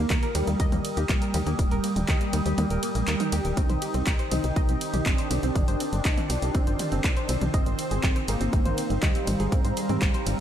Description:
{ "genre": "melodic techno", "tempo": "121 BPM", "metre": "4/4", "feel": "straight", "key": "C minor", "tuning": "A4 = 440 Hz", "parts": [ { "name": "fat analog lead", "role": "melody", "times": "0.0-10.4 s", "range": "G3 to Eb4", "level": "-31 LUFS", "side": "right 1 dB", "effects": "analog chorus, sidechain pumping, tape echo" }, { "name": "soft round pluck", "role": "arpeggios", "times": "0.0-10.4 s", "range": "Bb3 to Eb5", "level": "-34 LUFS", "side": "equal", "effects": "chorus, sidechain pumping, ping-pong delay" }, { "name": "tight sequencer bass", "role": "bass", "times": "0.0-10.4 s", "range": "Eb1 to Ab2", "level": "-28 LUFS", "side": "equal", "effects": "sidechain pumping" }, { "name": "warbly tape-like pad", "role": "texture", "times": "0.0-10.4 s", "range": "F4 to Eb6", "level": "-36 LUFS", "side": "equal", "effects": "chorus, built-in reverb, phaser, sidechain pumping" }, { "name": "electronic kick drum", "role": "drums", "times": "0.1-10.1 s", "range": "none", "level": "-25 LUFS", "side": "equal", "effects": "none" }, { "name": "punchy analog drum machine", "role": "drums", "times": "0.1-10.4 s", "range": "handclaps, hi-hat, ride cymbal, toms", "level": "-32 LUFS", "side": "equal", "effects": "none" }, { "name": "evolving wavetable pad", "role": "sustained chords", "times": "4.3-10.4 s", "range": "Eb3 to C5", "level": "-35 LUFS", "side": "right 1 dB", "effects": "chorus, built-in reverb, sidechain pumping" } ], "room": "light reverb", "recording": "none", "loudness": "-23 LUFS", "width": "side -10 dB against mid", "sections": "0.0-10.4 A section", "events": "kick drops out 2.6-3.6", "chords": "0.0 Eb; 3.6 Cm; 7.5 Ab" }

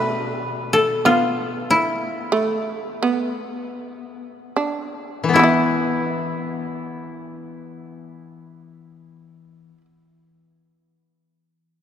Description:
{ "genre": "japanese traditional, Japanese chamber music", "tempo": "38-52 BPM", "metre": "4/4", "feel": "rubato", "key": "E in sen", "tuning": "A4 = 440 Hz", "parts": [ { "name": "koto", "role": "melody", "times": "0.0-9.8 s", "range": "E4 to B4", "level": "-21 LUFS", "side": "left 2 dB", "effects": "none" }, { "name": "shamisen", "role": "second line", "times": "0.0-9.9 s", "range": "E3 to E4", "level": "-24 LUFS", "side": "right 3 dB", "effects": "none" }, { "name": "koto", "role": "accompaniment", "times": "0.0-9.8 s", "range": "B2 to E4", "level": "-23 LUFS", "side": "left 5 dB", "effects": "none" } ], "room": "wet cathedral reverb, RT60 4.8 s", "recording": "none", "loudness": "-19 LUFS", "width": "side -9 dB against mid", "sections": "0.0-5.4 A section; 5.4-11.5 B section", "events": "slowing down 0.0-5.4", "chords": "none" }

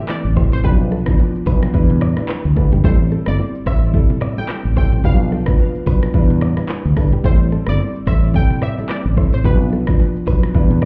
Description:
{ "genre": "afrobeats", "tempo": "109 BPM", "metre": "4/4", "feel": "swing 58% on 16ths", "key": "A minor", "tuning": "A4 = 439 Hz", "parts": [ { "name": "dark grand piano", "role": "accompaniment", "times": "0.0-10.9 s", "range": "E3 to B4", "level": "-25 LUFS", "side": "equal", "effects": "none" }, { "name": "analog pluck", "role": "melody", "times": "0.1-10.9 s", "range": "B4 to G5", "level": "-32 LUFS", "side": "equal", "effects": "chorus, tape echo" }, { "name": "afro-pop drum kit", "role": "drums", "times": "0.1-10.9 s", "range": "handclaps, hi-hat, kick drum, rim click, shaker, toms", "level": "-19 LUFS", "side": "equal", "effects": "vintage 12-bit sampler grit" }, { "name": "bongos and congas", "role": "percussion", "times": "0.1-10.9 s", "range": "none", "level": "-28 LUFS", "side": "equal", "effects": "none" }, { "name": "fretless electric bass", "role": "bass", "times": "0.2-10.9 s", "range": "G1 to E2", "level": "-19 LUFS", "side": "equal", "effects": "none" }, { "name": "direct-recorded clean electric guitar", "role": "riff", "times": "0.4-10.9 s", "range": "G4 to D5", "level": "-33 LUFS", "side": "equal", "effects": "spring reverb, tape echo" } ], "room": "little or no reverb", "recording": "heard muffled through a wall, club reverb, EQ", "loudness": "-16 LUFS", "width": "mono", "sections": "0.0-10.9 A section", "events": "none", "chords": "0.0 Am7; 0.6 Bdim; 1.7 Em7; 2.8 Am7; 5.0 Bdim; 6.1 Em7; 7.2 Am7; 9.4 Bdim" }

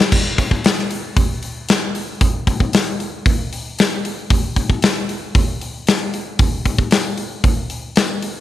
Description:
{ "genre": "rock", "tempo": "115 BPM", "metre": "4/4", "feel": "straight", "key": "none", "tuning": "none", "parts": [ { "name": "big rock drum kit", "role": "drums", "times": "0.0-8.3 s", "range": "crash cymbal, hi-hat, kick drum, snare drum", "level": "-16 LUFS", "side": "left 1 dB", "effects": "none" } ], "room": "light reverb", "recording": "1960s-style stereo", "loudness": "-16 LUFS", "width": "side -13 dB against mid", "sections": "0.1-8.4 A section", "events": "none", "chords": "none" }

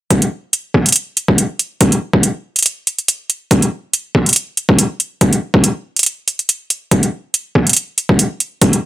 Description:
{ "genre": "deep dubstep", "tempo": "141 BPM", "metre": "4/4", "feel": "swing 54% on 16ths, half-time", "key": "none", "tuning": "none", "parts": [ { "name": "electronic hi-hat", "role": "drums", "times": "0.1-8.8 s", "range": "none", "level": "-13 LUFS", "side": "right 1 dB", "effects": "none" }, { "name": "electronic kick drum", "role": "drums", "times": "0.1-8.7 s", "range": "none", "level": "-12 LUFS", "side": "equal", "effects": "overdrive, high-pass filter on kick, high-pass filter on room" } ], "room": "digital ambience", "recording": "none", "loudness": "-13 LUFS", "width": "side -15 dB against mid", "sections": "0.1-8.9 A section", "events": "none", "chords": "none" }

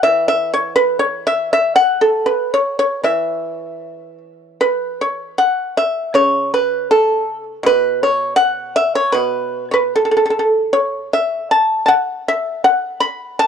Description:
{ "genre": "chinese traditional, Chinese solo plucked strings", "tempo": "75-81 BPM", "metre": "2/4", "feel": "rubato", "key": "E zhi mode", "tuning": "A4 = 440 Hz", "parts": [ { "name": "pipa", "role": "solo", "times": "0.0-13.5 s", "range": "B2 to B5", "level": "-14 LUFS", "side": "equal", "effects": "none" } ], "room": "studio ambience", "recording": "dry, close 1970s-style studio recording", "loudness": "-14 LUFS", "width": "side -7 dB against mid", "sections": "0.0-4.6 A section; 4.6-13.5 B section", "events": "none", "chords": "none" }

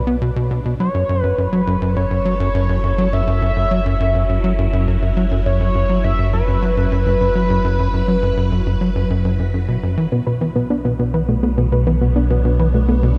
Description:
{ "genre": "ambient, sequencer-driven space music", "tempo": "103 BPM", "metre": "4/4", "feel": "straight", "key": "unclear", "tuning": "A4 = 439 Hz", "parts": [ { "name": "pulse-width lead", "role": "melody", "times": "0.0-9.5 s", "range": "B4 to E5", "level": "-25 LUFS", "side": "equal", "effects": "chorus, delay" }, { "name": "phased string machine", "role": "sustained chords", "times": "0.0-13.2 s", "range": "B2 to C#5", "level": "-30 LUFS", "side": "equal", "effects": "ensemble chorus, phaser" }, { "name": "warm sub bass", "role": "bass", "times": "0.0-13.2 s", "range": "F#1 to B1", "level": "-23 LUFS", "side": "equal", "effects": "none" }, { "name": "tight sequencer bass", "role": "riff", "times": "0.1-13.1 s", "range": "F#2 to B3", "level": "-21 LUFS", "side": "equal", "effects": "delay" }, { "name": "soft round pluck", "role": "arpeggios", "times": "10.1-13.1 s", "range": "A3 to B4", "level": "-23 LUFS", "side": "equal", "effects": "chorus, cassette tape, delay" } ], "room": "moderate huge ambient reverb, RT60 8.9 s", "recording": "dark, warm production", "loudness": "-18 LUFS", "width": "mono", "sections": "0.0-13.2 A section", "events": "fade-in on string machine 0.0-13.2", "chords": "0.0 Bm; 0.8 F#m7; 10.1 Bmadd9" }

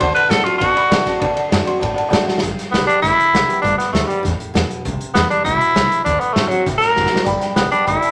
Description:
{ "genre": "rockabilly", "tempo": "198 BPM", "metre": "4/4", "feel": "straight", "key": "G major", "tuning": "A4 = 442 Hz", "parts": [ { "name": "raspy tenor saxophone", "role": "melody", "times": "0.0-8.1 s", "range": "F#3 to C5", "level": "-18 LUFS", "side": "equal", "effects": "none" }, { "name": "dark upright piano", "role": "accompaniment", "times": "0.0-2.4, 7.2-8.1 s", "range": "D5 to C6", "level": "-23 LUFS", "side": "equal", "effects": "none" }, { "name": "picked steel-string acoustic guitar", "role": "accompaniment", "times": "0.0-8.1 s", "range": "G2 to G4", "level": "-27 LUFS", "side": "equal", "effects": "none" }, { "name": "upright bass", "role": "bass", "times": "0.0-8.1 s", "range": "F#1 to C3", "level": "-27 LUFS", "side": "equal", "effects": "none" }, { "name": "vintage drum kit", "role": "drums", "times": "0.0-8.1 s", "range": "hi-hat, kick drum, ride cymbal, snare drum, splash cymbal", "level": "-23 LUFS", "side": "equal", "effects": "none" } ], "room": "moderate large studio reverb, RT60 1.1 s", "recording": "none", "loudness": "-17 LUFS", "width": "mono", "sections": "0.0-2.4 A section; 2.4-8.1 B section", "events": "drum fill 2.3, 7.0-7.3", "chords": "0.0 D7; 2.4 G; 4.8 C; 6.1 D7; 7.3 G" }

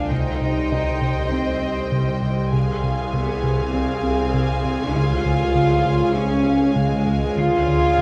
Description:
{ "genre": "cinematic, suspense film score", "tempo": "99 BPM", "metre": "4/4", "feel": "straight", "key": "unclear", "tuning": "A4 = 440 Hz", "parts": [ { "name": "warm symphonic violin section", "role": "melody", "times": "0.0-8.0 s", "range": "G5 to Ab5", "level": "-35 LUFS", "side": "equal", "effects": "none" }, { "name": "dark symphonic violin section", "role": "second line", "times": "0.0-8.0 s", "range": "Eb5 to F5", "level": "-33 LUFS", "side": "equal", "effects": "none" }, { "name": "dark symphonic viola section", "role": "accompaniment", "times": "0.0-8.0 s", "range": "Ab4 to C5", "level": "-34 LUFS", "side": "equal", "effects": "none" }, { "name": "glass harmonica", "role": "sustained chords", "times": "0.0-8.0 s", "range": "G4 to C6", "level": "-33 LUFS", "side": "equal", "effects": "none" }, { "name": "rich symphonic double bass section", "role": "bass", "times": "0.0-8.0 s", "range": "C2 to D2", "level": "-28 LUFS", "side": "equal", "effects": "none" }, { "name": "warm symphonic cello section", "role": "bass", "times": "0.0-8.0 s", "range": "G3 to F4", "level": "-25 LUFS", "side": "equal", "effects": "none" }, { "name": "swarming drone", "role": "drone", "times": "0.0-8.0 s", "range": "C2 to D2", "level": "-31 LUFS", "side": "equal", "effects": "built-in reverb" }, { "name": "dark baby grand piano", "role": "texture", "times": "0.0-2.6 s", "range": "Eb4 to Eb5", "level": "-37 LUFS", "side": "equal", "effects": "none" }, { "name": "round analog bass", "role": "riff", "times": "0.1-8.0 s", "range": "C3 to Db4", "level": "-27 LUFS", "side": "equal", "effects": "none" } ], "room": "wet scoring stage reverb, RT60 2.0 s", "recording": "vinyl crackle", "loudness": "-20 LUFS", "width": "mono", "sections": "0.0-8.0 A section", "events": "none", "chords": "0.1 Cm; 2.5 Fm/C; 5.0 Db; 7.4 Ddim" }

